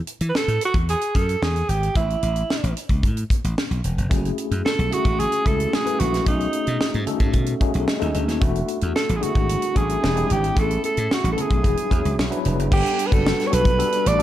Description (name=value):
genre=polished 1980s jazz-funk pop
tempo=112 BPM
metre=4/4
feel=straight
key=A major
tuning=A4 = 440 Hz
part: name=tight funk drum kit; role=drums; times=0.1-14.2 s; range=crash cymbal, hi-hat, kick drum, snare drum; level=-23 LUFS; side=equal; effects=none
part: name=slap bass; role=bass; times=0.2-14.2 s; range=E1 to E3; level=-23 LUFS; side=equal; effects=none
part: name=breathy alto saxophone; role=melody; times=0.3-14.2 s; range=D#4 to D5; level=-23 LUFS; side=right 2 dB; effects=none
part: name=tine electric piano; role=accompaniment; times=4.1-14.2 s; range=F#3 to F#5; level=-26 LUFS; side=left 3 dB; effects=overdrive, fast stereo tremolo, wide subtle chorus
part: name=congas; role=percussion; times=4.1-12.6 s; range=none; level=-35 LUFS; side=right 2 dB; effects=none
room=light reverb, small room ambience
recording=dark, warm production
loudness=-19 LUFS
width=side -12 dB against mid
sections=0.0-12.7 A section; 12.7-14.2 B section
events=tine electric piano fill 7.6-8.4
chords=0.0 Esus4; 1.4 E; 2.0 A5; 4.1 F#m7; 6.3 B13; 8.4 E7sus4; 10.0 E7alt; 10.6 Amaj9; 11.6 E9; 12.7 Gmaj7